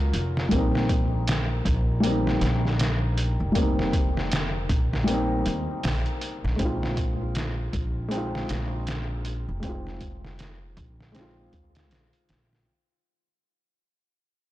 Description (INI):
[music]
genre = trip hop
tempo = 79 BPM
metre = 4/4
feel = swing 58% on 16ths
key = unclear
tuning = A4 = 440 Hz
[part]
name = felt-muted upright piano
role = accompaniment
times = 0.0-12.7 s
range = Gb3 to F4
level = -28 LUFS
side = left 1 dB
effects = tremolo, tape echo
[part]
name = upright bass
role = bass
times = 0.0-12.6 s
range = F1 to Eb2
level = -28 LUFS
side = equal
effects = tube saturation
[part]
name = trip hop sampler-style drum kit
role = drums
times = 0.1-12.7 s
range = hi-hat, kick drum, snare drum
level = -28 LUFS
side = equal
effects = small room ambience
[sound]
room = light reverb, small room reverb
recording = blown-out, overdriven recording, overdrive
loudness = -23 LUFS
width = side -15 dB against mid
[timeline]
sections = 0.0-12.7 A section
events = fade-out 4.6-12.7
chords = 0.0 Gbmaj7/F; 0.5 Cm7; 6.6 Fm7